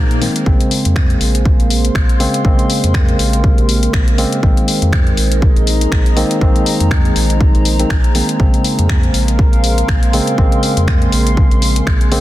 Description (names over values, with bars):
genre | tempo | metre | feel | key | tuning
deep house | 121 BPM | 4/4 | swing 57% on 16ths | Bb minor | A4 = 439 Hz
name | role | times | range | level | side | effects
dark analog pad | sustained chords | 0.0-12.2 s | Bb3 to C6 | -25 LUFS | right 2 dB | chorus, sidechain pumping
rubbery square bass | bass | 0.0-12.2 s | Bb1 to Bb2 | -16 LUFS | equal | sidechain pumping
swell | sound effects | 0.0-0.5 s | none | -27 LUFS | left 3 dB | none
warbly tape-like pad | texture | 0.0-12.2 s | Ab4 to C6 | -24 LUFS | equal | chorus, built-in reverb, sidechain pumping
house drum kit | drums | 0.1-12.2 s | finger snaps, hi-hat | -22 LUFS | left 3 dB | soft clipping on snare
bright tine electric piano | stabs | 0.2-12.2 s | Db3 to C4 | -18 LUFS | equal | sidechain pumping, low-pass filter, digital delay
electronic kick drum | drums | 0.5-12.0 s | none | -13 LUFS | equal | none
room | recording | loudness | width
digital ambience | dense, heavily limited modern master | -11 LUFS | side -15 dB against mid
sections
0.0-12.2 A section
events
swell 0.0-0.5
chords
0.5 Bbm9; 4.4 Abadd9/Bb; 8.4 Bbm9